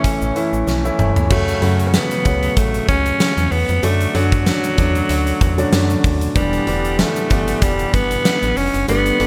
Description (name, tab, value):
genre	1980s-style pop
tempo	95 BPM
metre	4/4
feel	swing 55% on 16ths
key	unclear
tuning	A4 = 440 Hz
part	growling alto saxophone	melody	0.0-9.3 s	F#3 to C#4	-23 LUFS	equal	delay
part	warm concert grand piano	accompaniment	0.0-9.3 s	C#3 to F#4	-24 LUFS	equal	none
part	warm analog pad	sustained chords	0.0-1.3 s	A4 to C#6	-36 LUFS	equal	none
part	big rock drum kit	drums	0.0-9.3 s	crash cymbal, hi-hat, kick drum, snare drum, tambourine, toms	-22 LUFS	equal	gated reverb
part	egg shaker	percussion	0.0-9.2 s	none	-40 LUFS	equal	none
part	slap-like FM bass	bass	0.2-9.3 s	E1 to F#2	-23 LUFS	equal	none
room	little or no reverb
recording	none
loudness	-17 LUFS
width	mono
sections	0.0-1.3 A section; 1.3-9.3 B section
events	drum fill 0.7-1.3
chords	0.0 A; 1.3 F#m; 3.8 Dmaj7; 6.4 Em7